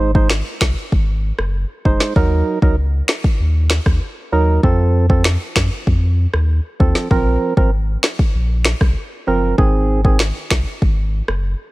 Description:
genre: dancehall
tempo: 97 BPM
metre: 4/4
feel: straight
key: Bb minor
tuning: A4 = 440 Hz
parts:
  - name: percussive organ stab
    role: accompaniment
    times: 0.0-10.2 s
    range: Eb3 to C5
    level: -19 LUFS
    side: right 3 dB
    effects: chorus
  - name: warm sub bass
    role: bass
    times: 0.0-11.5 s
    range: Gb1 to Gb2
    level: -17 LUFS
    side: equal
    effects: none
  - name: afro-pop drum kit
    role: drums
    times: 0.1-11.4 s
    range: finger snaps, kick drum, rim click, snare drum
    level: -16 LUFS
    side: equal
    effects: overdrive, vintage 12-bit sampler grit
room: little or no reverb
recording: none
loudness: -14 LUFS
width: side -20 dB against mid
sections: 0.0-7.1 A section; 7.1-11.7 B section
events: none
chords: 0.0 Ab; 2.2 Ebm; 4.6 F; 7.1 Bbsus2; 9.6 Ab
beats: 0.30 0.92 1.54 | 2.16 2.78 3.40 4.02 | 4.63 5.25 5.87 6.49 | 7.11 7.73 8.35 8.96 | 9.58 10.20 10.82 11.44

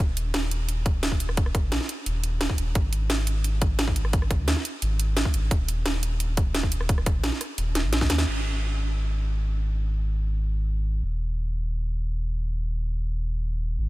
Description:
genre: liquid drum and bass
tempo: 174 BPM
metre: 4/4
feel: straight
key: unclear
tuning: A4 = 441 Hz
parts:
  - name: sub bass with octave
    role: bass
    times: 0.0-13.9 s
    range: D#1 to D#2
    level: -26 LUFS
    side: equal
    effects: none
  - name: drum and bass drum kit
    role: drums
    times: 0.0-8.3 s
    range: crash cymbal, hi-hat, rim click, snare drum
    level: -29 LUFS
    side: right 1 dB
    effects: overdrive, low-pass filter on hats, low-pass filter on snare, low-pass filter on cymbals
  - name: electronic kick drum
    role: drums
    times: 0.0-8.1 s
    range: none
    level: -24 LUFS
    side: equal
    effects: overdrive
room: digital ambience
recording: dense, heavily limited modern master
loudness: -23 LUFS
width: side -18 dB against mid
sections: 0.0-8.3 A section; 8.3-13.9 B section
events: drum fill 7.8-8.3; band accent 8.2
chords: none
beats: | 0.00 0.34 0.69 1.03 | 1.38 1.72 2.06 2.41 | 2.75 3.10 3.44 3.79 | 4.13 4.48 4.82 5.17 | 5.51 5.86 6.20 6.55 | 6.89 7.24 7.58 7.93 | 8.27 8.62 8.96 9.31 | 9.65 10.00 10.34 10.69 | 11.03 11.38 11.72 12.06 | 12.41 12.76 13.10 13.44 | 13.79

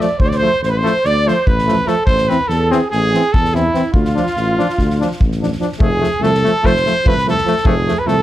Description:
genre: balkan folk, Balkan brass band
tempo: 290 BPM (eighths)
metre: 9/8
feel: straight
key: D dorian sharp4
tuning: A4 = 440 Hz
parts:
  - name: warm cornet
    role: melody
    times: 0.0-8.2 s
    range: E4 to D5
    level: -18 LUFS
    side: equal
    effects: plate reverb
  - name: mellow flugelhorn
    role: second line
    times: 0.0-8.2 s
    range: E4 to D5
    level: -22 LUFS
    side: right 4 dB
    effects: none
  - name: brilliant trombone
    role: accompaniment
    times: 0.0-8.2 s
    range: A3 to D4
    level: -21 LUFS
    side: left 6 dB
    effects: none
  - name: warm euphonium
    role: accompaniment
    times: 0.0-8.1 s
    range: E3 to F3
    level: -22 LUFS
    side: right 5 dB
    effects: none
  - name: soft-mallet drum kit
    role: percussion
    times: 0.0-8.1 s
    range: kick drum, snare drum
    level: -19 LUFS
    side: equal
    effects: none
  - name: mellow tuba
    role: bass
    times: 0.2-8.2 s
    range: F1 to E2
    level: -19 LUFS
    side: left 1 dB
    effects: none
room: light reverb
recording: none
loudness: -13 LUFS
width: side -13 dB against mid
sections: 0.0-5.8 A section; 5.8-8.2 B section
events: none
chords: 0.0 Dm; 2.1 Am; 3.9 Dm; 5.8 F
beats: | 0.20 0.41 0.61 0.82 1.03 1.24 1.45 1.66 1.86 | 2.07 2.28 2.49 2.70 2.90 3.11 3.32 3.52 3.73 | 3.94 4.15 4.35 4.56 4.77 4.97 5.18 5.38 5.59 | 5.80 6.00 6.21 6.41 6.62 6.83 7.03 7.24 7.44 | 7.64 7.85 8.05

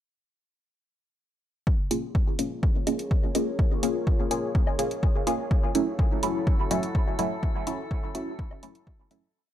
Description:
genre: dub techno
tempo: 125 BPM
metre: 4/4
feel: straight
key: unclear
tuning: A4 = 440 Hz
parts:
  - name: dark analog pad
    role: sustained chords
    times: 2.5-9.3 s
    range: Fb4 to Db5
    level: -36 LUFS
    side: left 1 dB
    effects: chorus, sidechain pumping
  - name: electronic kick drum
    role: drums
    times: 1.7-9.0 s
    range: none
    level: -24 LUFS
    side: equal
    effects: overdrive, studio reverb
  - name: filtered dub chord stab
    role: stabs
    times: 1.9-9.2 s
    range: Gb3 to Ab4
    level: -28 LUFS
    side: equal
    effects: phaser, sidechain pumping, dub echo
  - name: electronic hi-hat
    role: drums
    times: 1.9-9.2 s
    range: none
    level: -34 LUFS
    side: equal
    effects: overdrive, studio reverb
  - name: woodblock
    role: percussion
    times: 2.9-8.6 s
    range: none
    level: -41 LUFS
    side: left 4 dB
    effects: sidechain pumping on perc, studio reverb, dub echo
  - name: drifting glass-harmonics texture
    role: texture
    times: 6.0-9.4 s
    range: A4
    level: -43 LUFS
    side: left 2 dB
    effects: chorus, built-in reverb, sidechain pumping
room: light reverb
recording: none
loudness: -24 LUFS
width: side -11 dB against mid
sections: 1.7-9.3 groove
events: fade-out 6.8-9.3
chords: 1.7 Bbm7; 5.5 Gbm7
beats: | 1.67 2.15 2.63 3.11 | 3.59 4.07 4.55 5.03 | 5.51 5.99 6.47 6.95 | 7.43 7.91 8.39 8.87

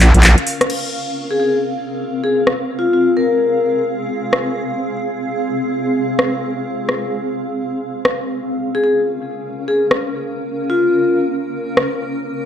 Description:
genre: bass house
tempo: 129 BPM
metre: 4/4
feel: swing 62% on 16ths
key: F minor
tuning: A4 = 440 Hz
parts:
  - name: house drum kit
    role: drums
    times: 0.0-11.8 s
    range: crash cymbal, handclaps, hi-hat, rim click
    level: -17 LUFS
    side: equal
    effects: overdrive
  - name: granular cloud pad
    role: texture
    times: 0.0-12.5 s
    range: C4 to F5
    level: -21 LUFS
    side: equal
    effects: built-in reverb
  - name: vibraphone with medium hard mallets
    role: melody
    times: 1.3-3.8, 8.7-11.2 s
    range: F4 to Bb4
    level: -17 LUFS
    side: left 2 dB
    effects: dub echo
room: moderate plate reverb, RT60 1.7 s, digital ambience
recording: dark, warm production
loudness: -15 LUFS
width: side -9 dB against mid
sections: 0.7-12.5 A section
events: none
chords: 0.0 Bbm; 0.7 Fm; 8.1 Bbm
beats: 0.23 | 0.70 1.16 1.63 2.09 | 2.56 3.02 3.49 3.95 | 4.42 4.88 5.35 5.81 | 6.28 6.74 7.21 7.67 | 8.14 8.60 9.07 9.53 | 10.00 10.46 10.93 11.39 | 11.86 12.32

